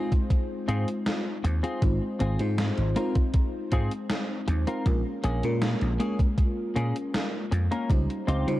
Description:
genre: vaporwave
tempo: 79 BPM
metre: 4/4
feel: straight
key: Ab major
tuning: A4 = 443 Hz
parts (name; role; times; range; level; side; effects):
- FM electric piano with soft pad layer; accompaniment; 0.0-8.6 s; G3 to C5; -30 LUFS; left 1 dB; wide subtle chorus, analog delay
- clean electric guitar; riff; 0.0-8.5 s; Bb3 to Bb4; -33 LUFS; left 1 dB; analog chorus, analog delay
- electronic kick drum; drums; 0.1-8.1 s; none; -23 LUFS; equal; none
- gated 80s digital drum machine; drums; 0.1-8.6 s; hi-hat, snare drum; -32 LUFS; equal; gated reverb, gated reverb snare
- vintage slap bass; bass; 0.7-8.6 s; Ab1 to Db3; -26 LUFS; equal; none
room: digital ambience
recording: dark, warm production, cassette tape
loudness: -24 LUFS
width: side -16 dB against mid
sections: 0.0-8.6 A section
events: none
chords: 0.0 Ab6; 4.9 Bbm7; 7.9 Dbmaj9#11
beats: 0.30 1.06 | 1.82 2.58 3.34 4.10 | 4.86 5.62 6.38 7.14 | 7.90

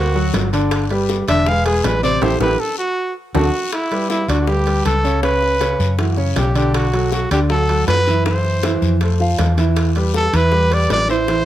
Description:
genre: Afro-Cuban jazz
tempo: 159 BPM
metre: 4/4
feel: straight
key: G major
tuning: A4 = 440 Hz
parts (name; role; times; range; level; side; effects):
- clear trumpet; melody; 0.0-11.4 s; E4 to F5; -19 LUFS; right 1 dB; none
- warm concert grand piano; accompaniment; 0.0-11.4 s; C3 to F#5; -20 LUFS; right 1 dB; none
- hollow-body short-scale fingered electric bass; bass; 0.0-11.4 s; E1 to F#2; -18 LUFS; equal; none
- bongos; percussion; 0.2-11.4 s; none; -28 LUFS; left 6 dB; none
- guiro; percussion; 0.3-11.4 s; none; -33 LUFS; left 7 dB; none
- timbales; percussion; 0.3-11.4 s; none; -28 LUFS; right 3 dB; none
room: light reverb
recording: none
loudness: -14 LUFS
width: side -12 dB against mid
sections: 0.0-3.7 A section; 3.7-11.4 B section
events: trumpet solo 0.0-3.7; drum fill 2.2-3.7; band accent 2.2-3.7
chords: 0.0 Daug7; 0.7 G6; 1.5 E; 2.2 A5; 3.0 D; 3.7 G6; 5.2 C#7sus4; 6.0 F#5; 6.7 Bm7; 8.3 Cadd11; 9.0 F; 9.8 Em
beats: 0.34 | 0.71 1.09 1.47 1.84 | 2.22 2.59 2.97 3.35 | 3.72 4.10 4.48 4.85 | 5.23 5.61 5.99 6.37 | 6.74 7.12 7.50 7.88 | 8.26 8.63 9.01 9.39 | 9.77 10.15 10.52 10.90 | 11.28

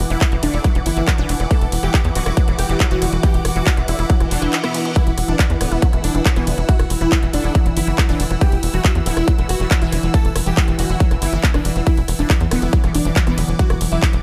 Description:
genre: psychedelic trance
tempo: 139 BPM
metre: 4/4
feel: straight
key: unclear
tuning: A4 = 440 Hz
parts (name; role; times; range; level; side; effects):
- evolving wavetable pad; sustained chords; 0.0-14.2 s; E3 to F#4; -31 LUFS; equal; none
- tight sequencer bass; bass; 0.0-14.2 s; D1 to E2; -23 LUFS; equal; none
- big-room dance drum kit; drums; 0.0-14.2 s; handclaps, hi-hat, ride cymbal, rim click; -27 LUFS; equal; none
- warm studio string section; texture; 0.0-14.2 s; E4 to E6; -30 LUFS; equal; sidechain pumping
- dense compressed supersaw; melody; 0.1-14.1 s; B3 to A4; -28 LUFS; equal; phaser, sidechain pumping, digital delay
- unison pluck; riff; 0.1-14.2 s; D3 to E4; -30 LUFS; equal; sidechain pumping, dub echo
- electronic kick drum; drums; 0.2-14.1 s; none; -18 LUFS; equal; none
- vowel-sweep wobble bass; second line; 0.4-13.4 s; E3 to B3; -39 LUFS; equal; none
- reverse cymbal; sound effects; 4.2-5.0 s; none; -33 LUFS; equal; none
room: little or no reverb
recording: none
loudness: -17 LUFS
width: mono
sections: 0.0-14.2 A section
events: reverse cymbal 4.2-5.0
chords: 0.0 E5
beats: 0.21 0.64 1.07 | 1.51 1.94 2.37 2.80 | 3.23 3.67 4.10 4.53 | 4.96 5.39 5.82 6.25 | 6.69 7.12 7.55 7.98 | 8.41 8.85 9.28 9.71 | 10.14 10.57 11.00 11.44 | 11.87 12.30 12.73 13.16 | 13.59 14.03

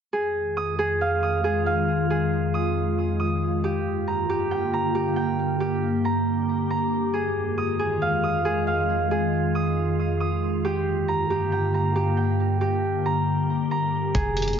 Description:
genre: hip hop, atmospheric cloud-rap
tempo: 137 BPM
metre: 4/4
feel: half-time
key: F dorian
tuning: A4 = 440 Hz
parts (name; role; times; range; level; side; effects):
- glassy FM pad; sustained chords; 0.4-14.6 s; F2 to Ab4; -24 LUFS; left 1 dB; ensemble chorus, built-in reverb, phaser, sidechain pumping
- Celtic harp; arpeggios; 0.1-14.6 s; G4 to Eb6; -25 LUFS; right 2 dB; digital delay
- soft 808-style bass; bass; 14.1-14.6 s; F1; -27 LUFS; equal; none
- lo-fi sampler-style drum kit; drums; 14.1-14.6 s; hi-hat, kick drum; -27 LUFS; equal; none
room: moderate digital room reverb, RT60 1.0 s, digital ambience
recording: heavily compressed radio sound, multiband compression, nothing above 7.5 kHz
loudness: -22 LUFS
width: side -7 dB against mid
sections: 0.1-14.1 A section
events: none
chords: 0.1 Fm7; 3.6 Gm7; 7.1 Fm7; 10.6 Gm7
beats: | 0.13 0.57 1.01 1.45 | 1.89 2.32 2.76 3.20 | 3.64 4.07 4.51 4.95 | 5.39 5.83 6.26 6.70 | 7.14 7.58 8.02 8.45 | 8.89 9.33 9.77 10.21 | 10.64 11.08 11.52 11.96 | 12.39 12.83 13.27 13.71 | 14.15 14.59

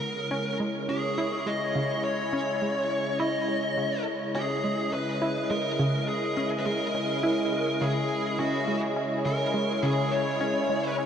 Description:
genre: ambient, sequencer-driven space music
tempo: 104 BPM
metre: 4/4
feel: straight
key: C# dorian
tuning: A4 = 440 Hz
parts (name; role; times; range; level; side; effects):
- high-gain lead guitar; melody; 0.0-10.9 s; F#4 to D#5; -30 LUFS; left 1 dB; distortion, tape echo
- sweeping resonant pad; sustained chords; 0.0-11.1 s; C#3 to D#5; -29 LUFS; equal; chorus
- analog pluck; riff; 0.3-11.1 s; C#3 to E4; -31 LUFS; right 1 dB; chorus, tape echo
room: wet huge ambient reverb, RT60 8.1 s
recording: dreamy mix soaked in reverb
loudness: -25 LUFS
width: side -8 dB against mid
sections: 0.0-11.1 A section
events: none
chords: 0.0 C#madd9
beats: 0.31 0.89 1.47 | 2.04 2.62 3.20 3.77 | 4.35 4.93 5.50 6.08 | 6.66 7.24 7.81 8.39 | 8.97 9.54 10.12 10.70

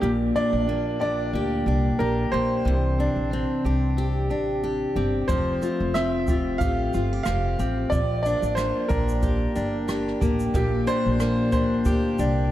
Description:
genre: acoustic pop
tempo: 91 BPM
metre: 4/4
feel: swing 55% on 16ths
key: unclear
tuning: A4 = 440 Hz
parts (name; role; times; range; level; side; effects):
- bright upright piano; melody; 0.0-12.1 s; G4 to F5; -28 LUFS; right 2 dB; tape echo
- fingerpicked steel-string acoustic guitar; accompaniment; 0.0-12.5 s; Bb2 to G4; -25 LUFS; left 2 dB; none
- direct-recorded clean electric guitar; arpeggios; 0.0-12.5 s; E3 to G4; -34 LUFS; right 5 dB; tape echo
- upright bass; bass; 0.0-12.5 s; F1 to D2; -26 LUFS; equal; none
- jazz brush drum kit; drums; 5.3-12.4 s; kick drum, rim click, shaker; -28 LUFS; equal; none
room: moderate plate reverb, RT60 3.2 s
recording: dreamy mix soaked in reverb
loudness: -21 LUFS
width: side -13 dB against mid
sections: 0.0-12.5 A section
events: none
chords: 0.0 Gm/Bb; 2.7 Cadd9; 5.3 Fadd9; 7.9 Bb6; 10.6 Gm/Bb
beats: | 0.02 0.68 1.34 2.00 | 2.66 3.32 3.98 4.63 | 5.29 5.95 6.61 7.27 | 7.92 8.58 9.24 9.90 | 10.55 11.21 11.87

